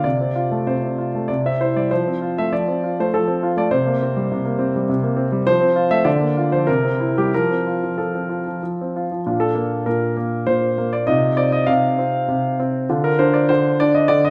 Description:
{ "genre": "classical-period piano sonatina", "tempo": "92-102 BPM", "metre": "3/4", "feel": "rubato", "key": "F major, Bb major from 9.2 s", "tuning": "A4 = 440 Hz", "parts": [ { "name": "clear concert grand piano", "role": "solo", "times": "0.0-14.3 s", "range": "Bb2 to F5", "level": "-19 LUFS", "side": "equal", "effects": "none" } ], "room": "wet recital hall reverb, RT60 1.5 s", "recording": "none", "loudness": "-19 LUFS", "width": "mono", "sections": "0.0-9.2 A section; 9.2-14.3 B section", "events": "none", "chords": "0.0 F/C; 1.3 C; 1.9 F; 3.7 C5; 5.5 F; 6.1 Bb/D; 6.7 C7; 7.3 F; 9.2 Bb; 11.1 F5/C; 12.9 Dm7" }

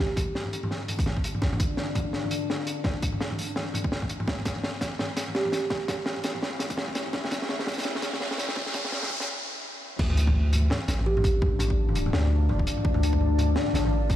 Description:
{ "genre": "half-time drum and bass", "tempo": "168 BPM", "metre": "4/4", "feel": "swing 58% on 16ths, half-time", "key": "D dorian", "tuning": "A4 = 440 Hz", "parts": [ { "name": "deep dark ambient pad", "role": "sustained chords", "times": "0.6-14.2 s", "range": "D4 to B5", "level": "-34 LUFS", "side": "left 4 dB", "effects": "chorus, built-in reverb, vintage 12-bit sampler grit, sidechain pumping" }, { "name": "crunchy breakbeat drum kit", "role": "drums", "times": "0.0-14.2 s", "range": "crash cymbal, hi-hat, snare drum, toms", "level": "-29 LUFS", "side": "equal", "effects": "none" }, { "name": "electronic kick drum", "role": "drums", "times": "0.2-14.2 s", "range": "none", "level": "-28 LUFS", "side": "equal", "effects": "overdrive" }, { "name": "riser", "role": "sound effects", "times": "6.1-9.3 s", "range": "none", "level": "-37 LUFS", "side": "equal", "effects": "none" }, { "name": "kalimba", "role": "melody", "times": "5.3-5.7, 11.1-11.4 s", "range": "G4", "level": "-33 LUFS", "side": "right 3 dB", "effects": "low-pass filter, ping-pong delay" }, { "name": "long sustained 808-style bass", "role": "bass", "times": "10.0-14.2 s", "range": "A1 to D2", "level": "-24 LUFS", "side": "equal", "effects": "tube saturation" } ], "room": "light reverb, small room ambience", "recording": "played on a big sound system in a bare room, large studio reverb, high-pass filter", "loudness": "-24 LUFS", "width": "side -12 dB against mid", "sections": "0.0-10.0 A section; 10.0-14.2 B section", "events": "build-up 0.0-10.0; drum fill 0.0-9.3; filter sweep on ambient pad 0.0-10.0; filter sweep on kalimba 0.0-10.0; filter sweep 0.0-10.0; riser 6.1-9.3; break 9.3-10.0; drop 10.0-14.2", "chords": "0.0 Dm; 4.3 Em; 10.0 Dm" }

